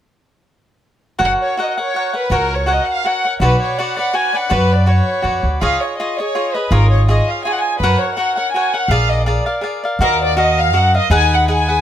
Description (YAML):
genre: mexican folk, mariachi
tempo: 164 BPM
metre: 3/4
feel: straight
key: F# major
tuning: A4 = 440 Hz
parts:
  - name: warm chamber violin section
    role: melody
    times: 1.2-11.8 s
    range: A#4 to G#5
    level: -18 LUFS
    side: equal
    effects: none
  - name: cavaquinho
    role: accompaniment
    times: 1.2-11.8 s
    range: D#4 to F#5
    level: -19 LUFS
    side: equal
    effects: none
  - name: upright bass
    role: bass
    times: 1.2-11.8 s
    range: F#1 to F#2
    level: -16 LUFS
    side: equal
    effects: none
room: little or no reverb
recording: close, detailed microphones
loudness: -14 LUFS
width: side -10 dB against mid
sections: 1.2-10.0 A section; 10.0-11.8 B section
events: none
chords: 1.2 F#; 3.4 Bmadd9; 5.6 C#add9; 7.8 F#; 8.9 A#7; 10.0 Ebmadd9; 11.1 B6/D#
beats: | 1.20 1.57 1.94 | 2.31 2.67 3.04 | 3.40 3.77 4.14 | 4.50 4.87 5.24 | 5.61 5.97 6.34 | 6.71 7.07 7.44 | 7.81 8.17 8.54 | 8.90 9.27 9.64 | 10.01 10.38 10.74 | 11.11 11.48